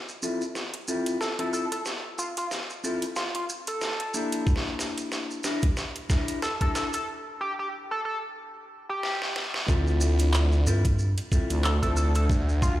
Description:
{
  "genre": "glitch hop",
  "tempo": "92 BPM",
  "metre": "4/4",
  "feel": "swing 56% on 16ths",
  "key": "D minor",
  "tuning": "A4 = 440 Hz",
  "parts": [
    { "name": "maracas", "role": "percussion", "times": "0.1-12.8 s", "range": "none", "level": "-37 LUFS", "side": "right 2 dB", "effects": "none" },
    { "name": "mellow electric guitar", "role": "stabs", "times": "0.2-12.1 s", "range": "Bb3 to Bb4", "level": "-32 LUFS", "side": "left 2 dB", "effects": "sidechain pumping, low-pass filter, dub echo" },
    { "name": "dubstep drum kit", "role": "drums", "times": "0.6-12.3 s", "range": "handclaps, hi-hat, snare drum", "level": "-32 LUFS", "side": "equal", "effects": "high-pass filter on snare, high-pass filter on hats, high-pass filter on room" },
    { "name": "sync lead", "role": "melody", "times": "1.2-12.7 s", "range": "F4 to A4", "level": "-32 LUFS", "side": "equal", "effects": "chorus, cassette tape, dub echo" },
    { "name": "electronic kick drum", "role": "drums", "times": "4.5-12.8 s", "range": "none", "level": "-24 LUFS", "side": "equal", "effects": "none" },
    { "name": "phased detuned saw bass", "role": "bass", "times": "9.7-12.8 s", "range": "D2", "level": "-23 LUFS", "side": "equal", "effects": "phaser" },
    { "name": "rubbery square bass", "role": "bass", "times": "10.7-11.1 s", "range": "G2", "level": "-23 LUFS", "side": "equal", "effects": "none" }
  ],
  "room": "light reverb",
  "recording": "played on a big sound system in a bare room, stone room reverb",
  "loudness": "-25 LUFS",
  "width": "side -15 dB against mid",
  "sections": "0.0-9.7 A section; 9.7-12.8 B section",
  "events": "build-up 0.0-9.7; drum fill 0.0-7.1, 9.0-9.7; filter sweep on clean electric guitar 0.0-9.7; break 7.1-9.7; drop 9.7-12.8",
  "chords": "0.0 Dm7 (rootless); 4.5 Bb6; 9.7 Dm7",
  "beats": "0.56 1.21 | 1.86 2.51 3.17 3.82 | 4.47 5.12 5.78 6.43 | 7.08 7.73 8.38 9.04 | 9.69 10.34 10.99 11.64 | 12.30"
}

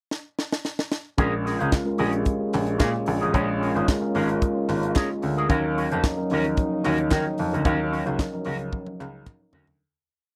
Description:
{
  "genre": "disco",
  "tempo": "111 BPM",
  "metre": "4/4",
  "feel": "straight",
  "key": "Bb minor",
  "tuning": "A4 = 438 Hz",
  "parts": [
    { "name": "tight funk drum kit", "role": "drums", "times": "0.1-9.8 s", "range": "hi-hat, kick drum, snare drum, toms", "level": "-26 LUFS", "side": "equal", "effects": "none" },
    { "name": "electric guitar with an envelope filter", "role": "accompaniment", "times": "1.2-9.7 s", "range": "Db4 to C5", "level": "-31 LUFS", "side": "equal", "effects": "analog chorus" },
    { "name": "mellow tine electric piano", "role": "accompaniment", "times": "1.2-9.8 s", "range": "F3 to Db5", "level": "-30 LUFS", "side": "equal", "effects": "none" },
    { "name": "mellow French horn section", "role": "sustained chords", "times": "1.2-9.8 s", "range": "Db3 to F4", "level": "-33 LUFS", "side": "equal", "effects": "none" },
    { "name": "warm baby grand piano", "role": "bass", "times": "1.2-9.8 s", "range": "Ab1 to Eb3", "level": "-29 LUFS", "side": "equal", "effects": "none" },
    { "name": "group handclap", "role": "percussion", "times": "1.7-9.4 s", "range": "none", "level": "-42 LUFS", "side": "equal", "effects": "none" }
  ],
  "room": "little or no reverb",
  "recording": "dry, close 1970s-style studio recording",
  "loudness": "-24 LUFS",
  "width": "mono",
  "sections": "0.0-1.2 pickup bar; 1.2-9.8 groove",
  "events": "drum fill 0.1-1.2, 8.7-9.8; fade-out 7.6-9.8",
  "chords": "0.0 N.C.; 1.2 Bbm7; 5.5 Ebm7",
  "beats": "0.11 0.65 | 1.19 1.72 2.26 2.80 | 3.34 3.88 4.42 4.95 | 5.49 6.03 6.57 7.11 | 7.65 8.19 8.73 9.27"
}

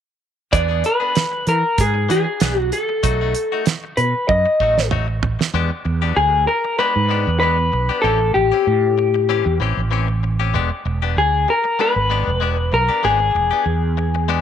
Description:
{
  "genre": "straight-eighth soul blues",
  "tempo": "96 BPM",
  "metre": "4/4",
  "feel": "swing 53% on 16ths",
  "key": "E mixolydian",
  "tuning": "A4 = 439 Hz",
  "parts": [
    { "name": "electric guitar through a small old amp", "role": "melody", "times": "0.5-14.4 s", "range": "G4 to D#5", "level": "-17 LUFS", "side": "left 3 dB", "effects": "none" },
    { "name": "direct-recorded clean electric guitar", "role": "stabs", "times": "0.5-14.4 s", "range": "E3 to G#4", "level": "-26 LUFS", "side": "left 10 dB", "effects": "none" },
    { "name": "mellow fretless electric bass", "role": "bass", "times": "0.5-14.4 s", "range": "E1 to E3", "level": "-20 LUFS", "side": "right 2 dB", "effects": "ensemble chorus" },
    { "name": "damped 70s drum kit", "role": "drums", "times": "0.5-5.5 s", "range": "hi-hat, kick drum, snare drum, toms", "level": "-21 LUFS", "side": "right 5 dB", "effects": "none" }
  ],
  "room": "light reverb, small room ambience",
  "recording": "1960s-style stereo",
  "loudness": "-16 LUFS",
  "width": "side -9 dB against mid",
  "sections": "0.5-5.5 A section; 5.5-14.4 B section",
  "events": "drum fill 4.3-5.5",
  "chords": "0.5 E7; 3.0 B7; 5.5 E7#9; 8.0 A7#9; 10.5 E7#9",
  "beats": "| 0.52 1.15 1.78 2.40 | 3.03 3.66 4.28 4.91 | 5.54 6.16 6.79 7.41 | 8.04 8.66 9.29 9.91 | 10.54 11.16 11.79 12.41 | 13.03 13.66 14.28"
}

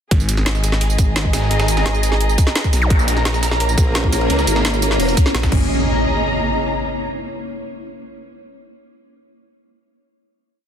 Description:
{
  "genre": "dark technical drum and bass",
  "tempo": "172 BPM",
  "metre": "4/4",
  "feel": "straight",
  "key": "unclear",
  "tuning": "A4 = 440 Hz",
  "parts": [
    { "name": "phased detuned saw bass", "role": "bass", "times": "0.1-5.7 s", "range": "G#1 to B1", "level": "-18 LUFS", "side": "equal", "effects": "phaser, tube saturation" },
    { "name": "breakbeat sampler-style drum kit", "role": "drums", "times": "0.1-5.5 s", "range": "hi-hat, ride cymbal, snare drum", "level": "-29 LUFS", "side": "right 1 dB", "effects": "high-pass filter on cymbals, studio reverb, high-pass filter on snare, high-pass filter on hats" },
    { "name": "drum and bass drum kit", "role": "drums", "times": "0.1-5.6 s", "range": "crash cymbal, hi-hat, snare drum, tambourine", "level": "-23 LUFS", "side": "equal", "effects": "overdrive, studio reverb" },
    { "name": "electronic kick drum", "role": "drums", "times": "0.1-5.6 s", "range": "none", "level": "-16 LUFS", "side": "equal", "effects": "studio reverb" },
    { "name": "dark symphonic string section", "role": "texture", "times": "0.1-7.0 s", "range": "G#4 to A#5", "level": "-24 LUFS", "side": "right 1 dB", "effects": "sidechain pumping" },
    { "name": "zap and impact", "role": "sound effects", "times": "2.8-2.9, 5.5-6.9 s", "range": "none", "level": "-23 LUFS", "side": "equal", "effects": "none" },
    { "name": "swarming drone", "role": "sustained chords", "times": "3.5-5.7 s", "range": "A#3 to C#5", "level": "-22 LUFS", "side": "equal", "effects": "built-in reverb, sidechain pumping" },
    { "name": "formant-sweep wobble bass", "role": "bass", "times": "3.8-5.2 s", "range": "E1 to C#2", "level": "-19 LUFS", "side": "equal", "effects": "chorus" }
  ],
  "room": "light reverb, digital ambience",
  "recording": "dense, heavily limited modern master",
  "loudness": "-15 LUFS",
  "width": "side -8 dB against mid",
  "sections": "0.1-5.7 drop; 5.7-7.1 final note",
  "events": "drop 0.1-5.7",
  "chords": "0.1 G#5; 2.9 A#dim; 5.5 G#m; 5.7 G#5",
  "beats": "| 0.11 0.46 0.81 1.16 | 1.51 1.86 2.21 2.56 | 2.90 3.25 3.60 3.95 | 4.30 4.65 5.00 5.35 | 5.70 6.04 6.39 6.74"
}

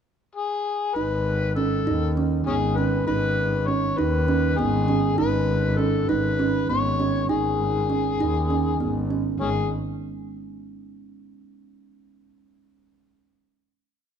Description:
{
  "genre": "contemporary instrumental, chamber music in an uneven meter",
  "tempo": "199 BPM (eighths)",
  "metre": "7/8",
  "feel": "straight",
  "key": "G# phrygian",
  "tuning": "A4 = 439 Hz",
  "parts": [
    { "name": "overdriven harmonica", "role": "melody", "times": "0.4-9.7 s", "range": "C#4 to C#5", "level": "-26 LUFS", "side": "left 6 dB", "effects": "none" },
    { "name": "kalimba", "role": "arpeggios", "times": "1.0-9.7 s", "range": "G#3 to D#4", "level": "-26 LUFS", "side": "right 7 dB", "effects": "none" },
    { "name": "bright double bass", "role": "bass", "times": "1.0-9.7 s", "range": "G#1 to D#2", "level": "-25 LUFS", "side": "left 1 dB", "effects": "none" }
  ],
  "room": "moderate recital hall reverb, RT60 1.7 s",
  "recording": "dark, warm production",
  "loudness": "-21 LUFS",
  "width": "side -8 dB against mid",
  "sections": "0.0-1.0 pickup bar; 1.0-9.4 A section; 9.4-11.5 final note",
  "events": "none",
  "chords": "0.0 N.C.; 1.0 G#m; 9.4 N.C.",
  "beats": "0.06 0.36 0.66 | 0.96 1.27 1.57 1.87 2.17 2.47 2.77 | 3.08 3.38 3.68 3.98 4.28 4.58 4.88 | 5.19 5.49 5.79 6.09 6.39 6.69 7.00 | 7.30 7.60 7.90 8.20 8.50 8.80 9.11 | 9.41"
}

